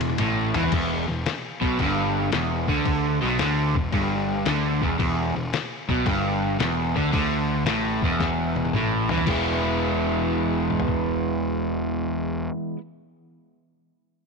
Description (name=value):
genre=blues rock power trio and southern rock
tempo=112 BPM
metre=4/4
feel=swing 67% on 8ths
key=E mixolydian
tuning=A4 = 440 Hz
part: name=crunchy overdriven guitar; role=riff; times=0.0-12.8 s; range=E2 to E4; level=-23 LUFS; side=right 1 dB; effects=none
part: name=fuzz picked electric bass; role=bass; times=0.0-12.5 s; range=E1 to E2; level=-28 LUFS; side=equal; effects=overdrive
part: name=lo-fi sampler-style drum kit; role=drums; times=0.0-11.1 s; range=crash cymbal, kick drum, ride cymbal, snare drum, toms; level=-28 LUFS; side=left 4 dB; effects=none
room=light reverb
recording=1960s-style stereo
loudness=-21 LUFS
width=side -4 dB against mid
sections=0.7-9.3 A section; 9.3-13.6 B section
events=drum fill 0.0-0.7, 8.2-9.3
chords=0.0 E5; 9.3 E